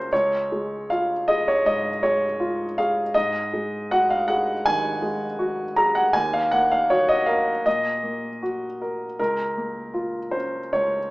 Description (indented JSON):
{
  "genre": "neoclassical minimalist piano",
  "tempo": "79 BPM",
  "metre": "4/4",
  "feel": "rubato",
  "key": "unclear",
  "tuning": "A4 = 440 Hz",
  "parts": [
    { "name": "warm grand piano", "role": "solo", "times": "0.0-11.1 s", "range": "Db2 to Bb5", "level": "-20 LUFS", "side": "equal", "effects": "none" }
  ],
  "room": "moderate large studio reverb, RT60 0.8 s",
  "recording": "band playing live in one room, small speaker sound",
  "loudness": "-20 LUFS",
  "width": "side -21 dB against mid",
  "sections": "0.0-11.1 A section",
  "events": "none",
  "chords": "0.1 Db; 3.1 Ab5; 6.2 Ebm; 9.2 Bbm/Db"
}